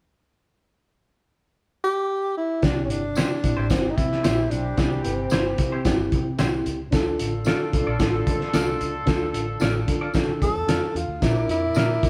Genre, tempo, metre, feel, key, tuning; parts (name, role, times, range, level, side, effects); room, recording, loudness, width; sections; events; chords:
uptempo 1960s-style soul; 112 BPM; 4/4; straight; C mixolydian; A4 = 439 Hz
breathy tenor saxophone; melody; 1.8-6.1, 10.4-12.1 s; C4 to A4; -28 LUFS; equal
mellow reed electric piano; accompaniment; 2.6-12.1 s; Bb2 to Bb4; -31 LUFS; equal; fast tremolo
vintage muted fingered electric bass; bass; 2.6-12.1 s; G1 to D3; -31 LUFS; equal
cloth-damped thuddy drum kit; drums; 2.6-12.1 s; hi-hat, kick drum, snare drum; -26 LUFS; equal
tambourine; percussion; 2.6-11.9 s; -45 LUFS; equal
semi-hollow electric guitar; stabs; 3.2-11.9 s; E4 to D5; -36 LUFS; equal
warm horn section; second line; 3.7-10.9 s; E3 to A4; -36 LUFS; equal
tonewheel organ; sustained chords; 11.2-12.1 s; Bb4 to D6; -37 LUFS; equal; overdrive, chorus vibrato, slow rotary speaker
moderate stone room reverb, RT60 1.2 s; band playing live in one room; -23 LUFS; mono
0.5-2.6 A section; 2.6-12.1 B section
0.5 N.C.; 2.6 C; 6.9 Dm; 11.2 Bb